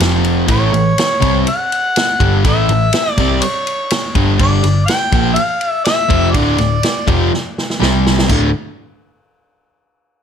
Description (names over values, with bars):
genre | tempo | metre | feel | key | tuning
blues rock power trio and southern rock | 123 BPM | 4/4 | straight | unclear | A4 = 438 Hz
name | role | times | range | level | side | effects
overdriven semi-hollow guitar | riff | 0.0-8.5 s | D2 to C4 | -16 LUFS | equal | none
vintage muted picked electric bass | bass | 0.0-8.5 s | D1 to C2 | -16 LUFS | equal | none
vintage drum kit | drums | 0.0-8.4 s | kick drum, ride cymbal, snare drum, splash cymbal | -18 LUFS | equal | none
mellow harmonica | melody | 0.5-7.3 s | C#5 to G5 | -17 LUFS | left 1 dB | overdrive
room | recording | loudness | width
light reverb | none | -12 LUFS | side -8 dB against mid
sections
0.0-8.3 A section; 8.3-10.2 B section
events
drum fill 7.3-8.3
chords
0.0 F5; 0.5 A7; 4.4 G5; 6.3 D5; 7.8 C5; 8.3 D5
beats
| 0.48 0.97 1.46 1.95 | 2.44 2.93 3.42 3.90 | 4.39 4.88 5.37 5.86 | 6.34 6.83 7.32 7.80 | 8.29